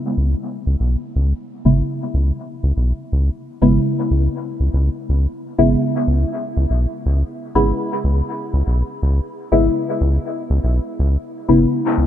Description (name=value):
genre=dub techno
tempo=122 BPM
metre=4/4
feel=swing 55% on 16ths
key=C# minor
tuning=A4 = 438 Hz
part: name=deep mellow chord stab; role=stabs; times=0.0-12.1 s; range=C#3 to E4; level=-20 LUFS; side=left 1 dB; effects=chorus, phaser, dub echo
part: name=round analog bass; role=bass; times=0.2-12.1 s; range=G#1 to C#2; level=-16 LUFS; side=equal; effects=none
room=moderate huge ambient reverb, RT60 7.4 s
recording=none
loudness=-16 LUFS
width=side -11 dB against mid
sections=0.0-12.1 A section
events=filter sweep on synth stab 0.0-12.1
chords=0.0 C#m7